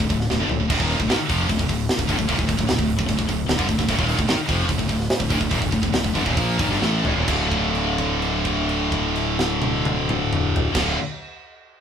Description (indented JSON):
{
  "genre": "heavy metal",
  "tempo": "128-151 BPM",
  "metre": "4/4",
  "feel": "straight",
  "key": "D minor",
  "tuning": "A4 = 440 Hz",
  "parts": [
    { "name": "high-gain distorted guitar", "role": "riff", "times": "0.0-11.0 s", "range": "D2 to Bb3", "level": "-25 LUFS", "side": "left 6 dB", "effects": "distortion" },
    { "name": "scooped high-gain guitar", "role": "riff", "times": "0.0-11.0 s", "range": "D2 to Bb3", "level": "-27 LUFS", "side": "right 7 dB", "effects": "distortion" },
    { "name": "fuzz fingered electric bass", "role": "bass", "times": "0.0-10.9 s", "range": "D1 to Bb1", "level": "-26 LUFS", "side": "equal", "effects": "overdrive" },
    { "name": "tight metal drum kit", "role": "drums", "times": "0.0-10.9 s", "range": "crash cymbal, hi-hat, kick drum, snare drum, toms", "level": "-24 LUFS", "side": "equal", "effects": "none" },
    { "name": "distorted electric guitar", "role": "riff", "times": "0.7-11.0 s", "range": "D2 to F4", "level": "-28 LUFS", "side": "right 1 dB", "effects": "overdrive" }
  ],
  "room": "moderate studio reverb, RT60 0.6 s",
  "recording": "band playing live in one room",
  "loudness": "-19 LUFS",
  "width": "side -8 dB against mid",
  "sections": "0.0-7.3 A section; 7.3-11.0 B section",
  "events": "drum fill 0.3-0.7, 6.8-7.3; slowing down 3.9-7.3; held note 7.3-10.7",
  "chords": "0.0 Dm"
}